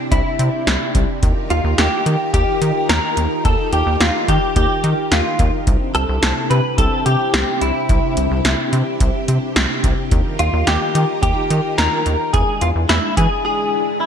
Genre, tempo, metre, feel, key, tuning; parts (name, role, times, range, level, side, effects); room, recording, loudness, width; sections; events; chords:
synth-pop; 108 BPM; 4/4; straight; A4 = 440 Hz
string machine, full ensemble; sustained chords; 0.0-14.1 s; C3 to Bb4; -23 LUFS; left 1 dB; ensemble chorus
direct-recorded clean electric guitar; melody; 0.1-14.1 s; E4 to B4; -20 LUFS; left 1 dB; ensemble chorus
rubbery square bass; bass; 0.1-13.3 s; C2 to E3; -18 LUFS; equal
electro analog drum machine; drums; 0.1-13.3 s; hi-hat, kick drum, snare drum; -19 LUFS; equal; gated reverb
light reverb; bright 1980s-style digital production; -15 LUFS; side -8 dB against mid
0.0-14.1 A section
break 13.4-14.1
0.0 Cadd9; 1.2 Ebadd9; 5.7 Cadd9; 10.1 Ebadd9; 12.3 E7